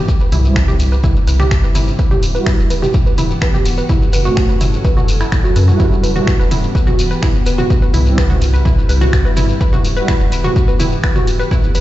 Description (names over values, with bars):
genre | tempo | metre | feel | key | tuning
melodic techno | 126 BPM | 4/4 | straight | E minor | A4 = 440 Hz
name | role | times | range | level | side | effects
evolving wavetable pad | sustained chords | 0.0-11.8 s | C3 to A4 | -24 LUFS | left 1 dB | chorus, built-in reverb, sidechain pumping
analog pluck | arpeggios | 0.0-11.8 s | E4 to B4 | -21 LUFS | right 1 dB | chorus, sidechain pumping, dub echo
electronic kick drum | drums | 0.1-11.6 s | none | -15 LUFS | equal | overdrive
shekere | percussion | 0.1-11.8 s | none | -30 LUFS | left 4 dB | none
round analog bass | bass | 0.3-11.8 s | E1 to F#2 | -15 LUFS | equal | sidechain pumping
punchy analog drum machine | drums | 0.3-11.8 s | finger snaps, hi-hat, toms | -20 LUFS | equal | sidechain pumping on toms, sidechain pumping on hats
brassy analog pad | stabs | 0.4-10.1 s | G3 to F#4 | -23 LUFS | right 3 dB | chorus, sidechain pumping, dub echo
room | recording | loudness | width
digital ambience | played on a big sound system in a bare room, stone room reverb, nothing above 7.9 kHz | -11 LUFS | side -15 dB against mid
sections
0.0-11.8 A section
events
filter sweep on synth pluck 0.0-11.8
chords
0.1 C; 2.0 Emadd9; 3.9 F#m; 5.8 Emadd9; 7.7 C; 9.6 Emadd9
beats
| 0.08 0.56 1.04 1.51 | 1.99 2.46 2.94 3.42 | 3.89 4.37 4.84 5.32 | 5.80 6.27 6.75 7.23 | 7.70 8.18 8.65 9.13 | 9.61 10.08 10.56 11.04 | 11.51